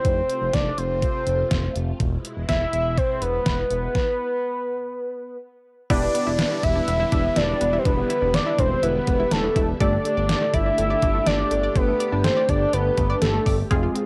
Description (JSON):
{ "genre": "synth-pop", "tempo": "123 BPM", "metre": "4/4", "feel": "straight", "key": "unclear", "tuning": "A4 = 440 Hz", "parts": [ { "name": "fat analog lead", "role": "melody", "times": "0.0-13.6 s", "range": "A4 to E5", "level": "-25 LUFS", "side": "equal", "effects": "cassette tape" }, { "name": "phased string machine", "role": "sustained chords", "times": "0.0-14.1 s", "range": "B2 to G4", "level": "-38 LUFS", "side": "equal", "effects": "ensemble chorus, phaser, cassette tape" }, { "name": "smooth synth bass", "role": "bass", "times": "0.0-13.9 s", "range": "E1 to G1", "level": "-28 LUFS", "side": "equal", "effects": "none" }, { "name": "detuned 8-bit digital drum machine", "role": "drums", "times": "0.0-14.1 s", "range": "hi-hat, kick drum, snare drum", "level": "-27 LUFS", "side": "equal", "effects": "overdrive, cassette tape" }, { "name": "funky polysynth comp", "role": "accompaniment", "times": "5.9-14.1 s", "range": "Ab3 to B4", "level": "-31 LUFS", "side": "equal", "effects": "chorus, cassette tape" }, { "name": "analog pluck", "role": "arpeggios", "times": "5.9-14.1 s", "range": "A3 to F5", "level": "-34 LUFS", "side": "equal", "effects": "chorus, cassette tape, tape echo" }, { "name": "downlifter", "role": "sound effects", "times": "5.9-9.8 s", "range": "none", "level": "-42 LUFS", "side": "equal", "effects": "none" } ], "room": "light reverb, digital ambience", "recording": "home recording on cassette", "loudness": "-22 LUFS", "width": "mono", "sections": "0.0-5.9 A section; 5.9-14.1 B section", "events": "stop 4.0-5.9", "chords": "0.0 F; 2.0 E; 4.0 N.C.; 5.9 Em7; 9.8 Gsus2" }